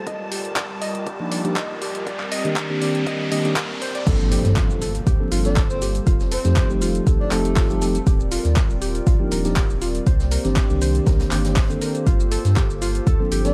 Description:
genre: deep house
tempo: 120 BPM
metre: 4/4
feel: straight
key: G minor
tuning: A4 = 439 Hz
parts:
  - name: hollow soft pad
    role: sustained chords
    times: 0.0-13.5 s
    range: G3 to D5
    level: -33 LUFS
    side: equal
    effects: chorus, sidechain pumping
  - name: riser and impact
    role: sound effects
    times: 0.0-6.1 s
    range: none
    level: -32 LUFS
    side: equal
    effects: none
  - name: soft string machine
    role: texture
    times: 0.0-4.1 s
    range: A5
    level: -41 LUFS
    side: equal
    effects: ensemble chorus, sidechain pumping
  - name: warbly dusty pluck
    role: arpeggios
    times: 0.1-13.4 s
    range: F4 to Eb5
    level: -33 LUFS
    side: equal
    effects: chorus, vintage 12-bit sampler grit, sidechain pumping, tape echo
  - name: warm sub bass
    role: bass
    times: 0.1-13.5 s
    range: Eb1 to G2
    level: -25 LUFS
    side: equal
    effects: sidechain pumping, high-pass filter
  - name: deep house drum kit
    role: drums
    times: 0.1-13.5 s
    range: crash cymbal, handclaps, hi-hat, shaker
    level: -31 LUFS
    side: equal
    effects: none
  - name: electronic kick drum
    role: drums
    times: 0.1-13.2 s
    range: none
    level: -22 LUFS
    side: equal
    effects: high-pass filter on kick, high-pass filter on room
  - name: mellow tine electric piano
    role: stabs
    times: 1.2-13.5 s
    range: Eb3 to A4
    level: -27 LUFS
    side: equal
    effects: sidechain pumping, delay
  - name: open jazz drum kit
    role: drums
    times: 4.1-13.5 s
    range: hi-hat, snare drum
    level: -42 LUFS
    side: equal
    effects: none
  - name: breathy flute-like synth lead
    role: melody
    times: 5.4-8.0, 13.4-13.5 s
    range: A4 to D5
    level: -32 LUFS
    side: equal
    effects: lush chorus, vintage 12-bit sampler grit, tape echo
room: little or no reverb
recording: vinyl crackle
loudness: -21 LUFS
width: mono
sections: 0.0-4.1 A section; 4.1-13.5 B section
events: build-up 0.0-4.1; riser 0.0-4.1; drop 4.1-13.5; impact 4.1-6.1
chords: 0.1 Ebmaj9; 2.1 Cm9; 4.1 Gm11; 6.1 F9; 8.1 Ebmaj9; 10.1 Cm9; 12.1 Gm11

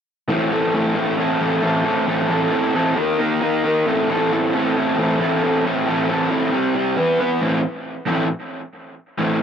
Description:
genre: rock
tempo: 134 BPM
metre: 4/4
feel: straight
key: A minor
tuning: A4 = 440 Hz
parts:
  - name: raw garage guitar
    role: solo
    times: 0.3-9.4 s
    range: A2 to B4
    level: -17 LUFS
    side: equal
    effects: overdrive, cassette tape, tape echo
room: moderate booth ambience, RT60 0.2 s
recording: home recording on cassette, nothing above 10.7 kHz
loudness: -17 LUFS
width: side -8 dB against mid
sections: 0.3-7.4 A section; 7.4-9.4 B section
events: none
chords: 0.3 Am; 3.0 D#5; 3.9 Am; 6.5 C5; 7.0 E5; 7.4 Am

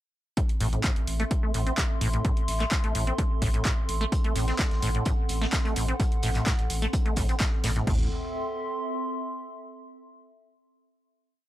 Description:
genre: acid house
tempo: 128 BPM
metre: 4/4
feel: straight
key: A dorian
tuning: A4 = 440 Hz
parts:
  - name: acid bass, saw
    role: riff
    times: 0.4-8.1 s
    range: A2 to C4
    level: -31 LUFS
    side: equal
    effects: tube saturation, lush chorus, cassette tape, analog delay
  - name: punchy analog drum machine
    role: drums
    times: 0.4-8.0 s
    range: crash cymbal, kick drum, toms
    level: -27 LUFS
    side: equal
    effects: overdrive
  - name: punchy analog drum machine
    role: drums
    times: 0.4-7.8 s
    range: handclaps, hi-hat, rim click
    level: -33 LUFS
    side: right 1 dB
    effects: overdrive
  - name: warbly tape-like pad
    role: texture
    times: 0.4-9.7 s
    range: C4 to C6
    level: -34 LUFS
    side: right 1 dB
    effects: chorus, built-in reverb, sidechain pumping
  - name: saturated sub bass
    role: bass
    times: 0.6-8.1 s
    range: A1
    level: -29 LUFS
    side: equal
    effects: tube saturation, sidechain pumping
  - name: crunchy breakbeat drum kit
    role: drums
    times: 4.1-7.8 s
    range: hi-hat, snare drum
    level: -40 LUFS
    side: equal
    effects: high-pass filter on hats, high-pass filter on snare, high-pass filter on room
room: light reverb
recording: dry, gritty hardware recording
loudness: -24 LUFS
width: side -14 dB against mid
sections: 0.4-7.9 groove; 7.9-9.7 final chord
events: none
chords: 0.4 Am

